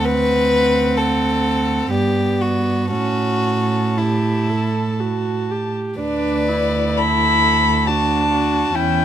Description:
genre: classical, slow romantic movement for string quartet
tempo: 57-68 BPM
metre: 3/4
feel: rubato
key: D major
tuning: A4 = 442 Hz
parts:
  - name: dark violin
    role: melody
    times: 0.0-9.0 s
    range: D5 to B5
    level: -22 LUFS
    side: left 3 dB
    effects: none
  - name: warm violin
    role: second line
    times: 0.0-9.0 s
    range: E4 to B4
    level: -21 LUFS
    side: left 2 dB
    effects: none
  - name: warm viola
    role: accompaniment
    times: 0.0-9.0 s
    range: B3 to A4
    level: -23 LUFS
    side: right 3 dB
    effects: none
  - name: dark cello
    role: bass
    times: 0.0-9.0 s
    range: D2 to A2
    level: -21 LUFS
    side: right 3 dB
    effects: none
room: little or no reverb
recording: close, detailed microphones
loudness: -16 LUFS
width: side -10 dB against mid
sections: 0.0-6.0 A section; 6.0-9.0 B section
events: none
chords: 0.0 D7; 1.9 G; 2.9 A; 6.0 D

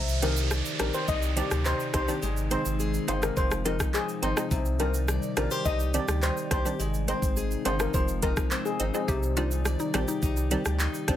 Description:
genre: dancehall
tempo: 105 BPM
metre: 4/4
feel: straight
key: C minor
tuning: A4 = 439 Hz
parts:
  - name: airy breathy pad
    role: sustained chords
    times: 0.0-11.2 s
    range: C3 to D5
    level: -36 LUFS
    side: right 1 dB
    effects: chorus, sidechain pumping
  - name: picked steel-string acoustic guitar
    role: arpeggios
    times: 0.0-11.2 s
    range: C3 to D5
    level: -34 LUFS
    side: left 6 dB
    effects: none
  - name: saturated sub bass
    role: bass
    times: 0.0-11.2 s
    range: F1 to D2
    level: -30 LUFS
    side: equal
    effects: none
  - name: downlifter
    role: sound effects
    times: 0.0-4.5 s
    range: none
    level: -36 LUFS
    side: right 5 dB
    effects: none
  - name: island pop drum kit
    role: drums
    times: 0.1-11.2 s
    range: handclaps, hi-hat, kick drum, rim click, shaker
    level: -30 LUFS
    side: equal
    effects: none
  - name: tube shaker and timbales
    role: percussion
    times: 0.1-11.1 s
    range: none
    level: -42 LUFS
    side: right 6 dB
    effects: none
  - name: steel pan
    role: melody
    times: 0.2-9.1 s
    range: Ab4 to Eb5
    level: -32 LUFS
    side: left 2 dB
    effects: digital delay
  - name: wavetable chord stab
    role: accompaniment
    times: 0.2-11.1 s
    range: Eb3 to F4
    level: -32 LUFS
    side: right 2 dB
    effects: none
  - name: mallet-like synth pluck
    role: second line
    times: 9.1-11.2 s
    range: Eb4 to G4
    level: -34 LUFS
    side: left 3 dB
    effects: chorus, digital delay
room: little or no reverb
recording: none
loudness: -25 LUFS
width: side -11 dB against mid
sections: 0.0-11.2 A section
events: none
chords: 0.0 Cmadd9; 2.2 Ab; 3.4 Fm7; 4.5 Cmadd9; 6.8 Ab; 7.9 Fm7; 9.1 Cmadd9

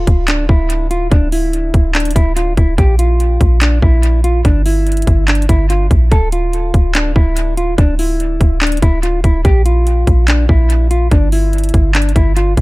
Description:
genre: hip hop, trap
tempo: 144 BPM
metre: 4/4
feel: half-time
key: D minor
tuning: A4 = 440 Hz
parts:
  - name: mellow electric guitar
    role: melody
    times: 0.0-12.5 s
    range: D4 to A4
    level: -18 LUFS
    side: equal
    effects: low-pass filter, dub echo
  - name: warm 808-style bass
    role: bass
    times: 0.0-12.6 s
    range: D1 to Bb1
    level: -14 LUFS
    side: equal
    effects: none
  - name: trap drum kit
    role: drums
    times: 0.1-12.6 s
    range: handclaps, hi-hat, kick drum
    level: -13 LUFS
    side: equal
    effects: none
room: little or no reverb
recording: echo-heavy mix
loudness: -10 LUFS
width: side -21 dB against mid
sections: 0.0-12.6 A section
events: none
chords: 0.0 Dm; 2.8 Bb5; 4.4 N.C.; 6.1 Dm; 9.4 Bb5; 11.1 G5

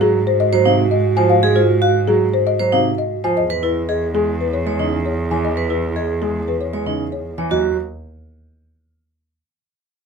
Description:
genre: classical, minimalist pattern music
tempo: 116 BPM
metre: 4/4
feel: straight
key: Eb dorian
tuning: A4 = 442 Hz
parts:
  - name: folk marimba with soft mallets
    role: melody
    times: 0.0-7.8 s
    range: Ab4 to Ab5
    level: -20 LUFS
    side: left 9 dB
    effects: none
  - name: mellow hollow wooden-headed alto flute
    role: second line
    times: 0.0-7.3 s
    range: Gb4 to G#4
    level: -24 LUFS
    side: right 9 dB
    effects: none
  - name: warm grand piano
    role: accompaniment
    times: 0.0-7.8 s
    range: C3 to Ab3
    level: -23 LUFS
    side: right 4 dB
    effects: none
  - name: warm cello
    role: bass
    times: 0.0-7.7 s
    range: Eb2 to Ab2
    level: -22 LUFS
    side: right 2 dB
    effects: none
  - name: vibraphone with hard mallets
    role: arpeggios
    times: 0.5-7.8 s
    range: Eb4 to Db5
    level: -21 LUFS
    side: right 6 dB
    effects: none
room: light reverb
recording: minimal, uncompressed stereo recording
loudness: -15 LUFS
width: side -6 dB against mid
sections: 0.0-7.5 A section; 7.5-9.6 B section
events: none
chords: 0.0 Ab7; 3.4 Emaj7; 7.5 Ebm

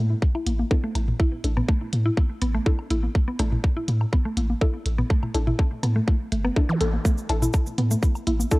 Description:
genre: minimal techno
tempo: 123 BPM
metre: 4/4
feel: straight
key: unclear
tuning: A4 = 440 Hz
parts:
  - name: mallet-like synth pluck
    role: riff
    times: 0.0-8.3 s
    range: E3 to A4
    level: -28 LUFS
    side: equal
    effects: chorus, sidechain pumping, analog delay
  - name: punchy sub bass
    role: bass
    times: 0.0-8.4 s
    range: G1 to A2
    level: -24 LUFS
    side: equal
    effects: sidechain pumping
  - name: electronic kick drum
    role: drums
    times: 0.2-8.6 s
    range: none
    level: -20 LUFS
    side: equal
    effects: cassette tape
  - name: electronic woodblock, congas and toms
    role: percussion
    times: 0.3-8.5 s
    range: none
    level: -31 LUFS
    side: left 1 dB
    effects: cassette tape, analog delay
  - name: electronic hi-hat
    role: drums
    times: 0.5-8.4 s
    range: none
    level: -36 LUFS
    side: right 1 dB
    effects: cassette tape
  - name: filtered dub chord stab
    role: stabs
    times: 0.7-8.6 s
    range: D4 to A4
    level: -31 LUFS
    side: left 2 dB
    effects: chorus, cassette tape, analog delay
  - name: zap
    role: sound effects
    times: 6.7-6.8 s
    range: none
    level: -36 LUFS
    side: equal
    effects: none
  - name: cabasa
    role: percussion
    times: 7.1-8.6 s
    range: none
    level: -36 LUFS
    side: right 2 dB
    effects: none
room: light reverb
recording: home recording on cassette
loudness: -21 LUFS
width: side -22 dB against mid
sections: 0.0-8.6 A section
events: filter sweep on synth arpeggio sound 0.0-8.6; filter sweep on synth stab 0.0-8.6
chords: 0.0 Asus4

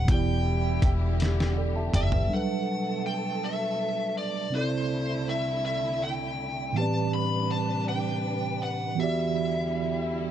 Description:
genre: slow six-eight R&B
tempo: 54 BPM (dotted quarters)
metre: 6/8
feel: straight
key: G major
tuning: A4 = 442 Hz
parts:
  - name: lead guitar through a small cranked amp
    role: melody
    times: 0.0-10.3 s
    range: C5 to B5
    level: -31 LUFS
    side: left 1 dB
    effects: overdrive
  - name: mellow tine electric piano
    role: accompaniment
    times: 0.0-10.3 s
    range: A2 to A5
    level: -29 LUFS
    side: right 3 dB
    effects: slow stereo tremolo
  - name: warm studio string section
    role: sustained chords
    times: 0.0-10.3 s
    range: C2 to B4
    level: -36 LUFS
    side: left 2 dB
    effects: none
  - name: vintage muted fingered electric bass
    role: bass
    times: 0.0-2.3 s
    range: E1 to F#1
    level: -26 LUFS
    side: equal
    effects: none
  - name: warm horn section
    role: stabs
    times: 0.1-1.9 s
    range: B2 to E4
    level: -39 LUFS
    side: left 6 dB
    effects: none
  - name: dusty soul sampler-style drum kit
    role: drums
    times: 0.1-2.3 s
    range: hi-hat, kick drum, snare drum, toms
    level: -26 LUFS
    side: equal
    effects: none
room: light reverb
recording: dark, warm production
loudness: -25 LUFS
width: side -10 dB against mid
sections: 0.0-2.3 A section; 2.3-10.3 A section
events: drum fill 1.2-2.3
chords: 0.1 Em9; 2.3 Gmaj9; 4.5 C69; 6.7 Am11; 9.0 Em9

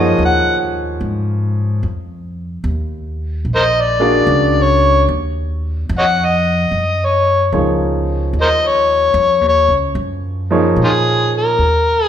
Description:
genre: jazz ballad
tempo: 74 BPM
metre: 4/4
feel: swing 66% on 8ths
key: Eb minor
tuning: A4 = 440 Hz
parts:
  - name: overdriven harmonica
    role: melody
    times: 0.0-12.1 s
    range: Eb4 to F#5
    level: -14 LUFS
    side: left 2 dB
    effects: none
  - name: warm baby grand piano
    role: accompaniment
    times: 0.0-11.6 s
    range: F3 to D5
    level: -18 LUFS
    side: right 1 dB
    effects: none
  - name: upright bass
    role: bass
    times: 0.0-12.1 s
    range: Bb1 to Bb2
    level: -18 LUFS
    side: equal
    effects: none
room: wet recital hall reverb, RT60 1.6 s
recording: recorded in a church or concert hall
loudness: -13 LUFS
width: side -9 dB against mid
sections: 0.0-11.6 A section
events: harmonica solo 0.0-11.6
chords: 0.0 B69 (rootless); 1.8 Ebsus2; 3.5 Bb7alt; 5.1 Ebm9

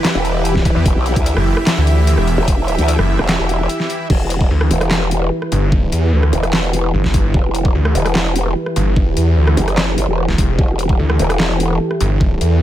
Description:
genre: heavy wobble dubstep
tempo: 148 BPM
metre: 4/4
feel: half-time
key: E minor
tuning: A4 = 440 Hz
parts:
  - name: supersaw pad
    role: sustained chords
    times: 0.0-12.6 s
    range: E3 to E5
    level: -21 LUFS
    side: right 1 dB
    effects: sidechain pumping, low-pass filter
  - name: dubstep drum kit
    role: drums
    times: 0.0-12.5 s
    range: crash cymbal, handclaps, hi-hat, rim click, snare drum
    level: -20 LUFS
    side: equal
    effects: overdrive, studio reverb
  - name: growl bass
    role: bass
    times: 0.1-11.8 s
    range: E1 to D2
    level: -17 LUFS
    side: equal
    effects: chorus, overdrive
  - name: electronic kick drum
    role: drums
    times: 0.6-12.3 s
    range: none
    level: -16 LUFS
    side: equal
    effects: overdrive, studio reverb
  - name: snarling distorted saw bass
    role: bass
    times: 0.8-12.6 s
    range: E1 to E2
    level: -15 LUFS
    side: equal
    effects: distortion, overdrive
room: digital ambience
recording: none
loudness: -13 LUFS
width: side -12 dB against mid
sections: 0.0-4.1 A section; 4.1-12.6 A section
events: drop 0.0-4.1, 4.1-12.6; break 3.7-4.1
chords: 0.0 Em

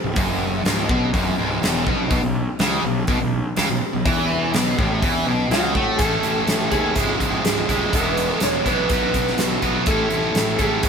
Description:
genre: classic rock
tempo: 124 BPM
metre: 4/4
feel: straight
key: unclear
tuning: A4 = 438 Hz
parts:
  - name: distorted electric guitar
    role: riff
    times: 0.0-10.9 s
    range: C#2 to B4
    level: -21 LUFS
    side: equal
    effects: overdrive
  - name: fuzz fingered electric bass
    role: bass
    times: 0.0-10.9 s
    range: C#1 to A2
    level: -25 LUFS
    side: equal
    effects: overdrive
  - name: huge arena drum kit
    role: drums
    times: 0.2-10.9 s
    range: hi-hat, kick drum, snare drum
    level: -23 LUFS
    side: equal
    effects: none
  - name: electric slide guitar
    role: melody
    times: 5.5-10.9 s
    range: F#4 to C#5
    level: -24 LUFS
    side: right 2 dB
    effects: none
room: moderate stone room reverb, RT60 1.0 s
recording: band playing live in one room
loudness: -18 LUFS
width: side -6 dB against mid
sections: 0.0-6.0 A section; 6.0-10.9 B section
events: none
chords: 0.0 C#m; 2.1 B5; 6.0 A; 7.0 C#m; 7.9 E; 8.9 Bsus4; 9.9 A

